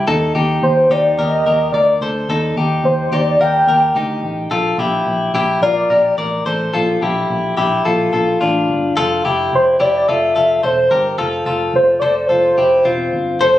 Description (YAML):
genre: jangly indie pop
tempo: 108 BPM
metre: 4/4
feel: straight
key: F major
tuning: A4 = 440 Hz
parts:
  - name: direct-recorded clean electric guitar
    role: arpeggios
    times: 0.0-13.6 s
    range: C4 to D5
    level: -18 LUFS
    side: left 2 dB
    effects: analog delay
  - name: vintage muted picked electric bass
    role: bass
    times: 0.0-13.6 s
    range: E1 to Eb2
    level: -23 LUFS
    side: equal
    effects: none
  - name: warm velvety synth lead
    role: melody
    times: 0.6-13.5 s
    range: C5 to G5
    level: -14 LUFS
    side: equal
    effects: chorus, analog delay
room: moderate large studio reverb, RT60 1.3 s, digital ambience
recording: recorded on a phone in the room, club reverb, compression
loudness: -13 LUFS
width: side -13 dB against mid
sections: 0.0-13.4 A section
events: none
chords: 0.1 Ebmaj7; 4.5 Bbmaj7; 9.0 Fmaj7